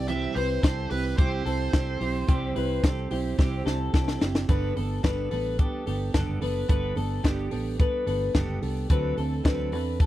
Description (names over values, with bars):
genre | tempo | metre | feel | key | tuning
jangly indie pop | 109 BPM | 4/4 | straight | G major | A4 = 440 Hz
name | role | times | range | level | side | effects
bluesy overdriven lead guitar | melody | 0.0-3.9 s | B4 to E5 | -34 LUFS | right 4 dB | distortion, tape echo
fingerpicked steel-string acoustic guitar | accompaniment | 0.0-10.1 s | G2 to A4 | -31 LUFS | right 5 dB | none
electric guitar through a small old amp | arpeggios | 0.0-10.1 s | G4 to B4 | -33 LUFS | left 4 dB | wide subtle chorus, tape echo
vintage muted fingered electric bass | bass | 0.0-10.1 s | F#1 to E2 | -30 LUFS | equal | none
compact cocktail drum kit | drums | 0.1-10.1 s | hi-hat, kick drum, snare drum | -23 LUFS | left 1 dB | none
room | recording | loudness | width
studio reverb | dry, close 1970s-style studio recording | -24 LUFS | side -14 dB against mid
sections
0.0-4.5 A section; 4.5-10.1 B section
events
drum fill 3.4-4.5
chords
0.0 C; 4.5 Gadd9; 8.9 D7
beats
| 0.08 0.63 1.18 1.73 | 2.28 2.83 3.38 3.94 | 4.49 5.04 5.59 6.14 | 6.69 7.24 7.79 8.35 | 8.90 9.45 10.00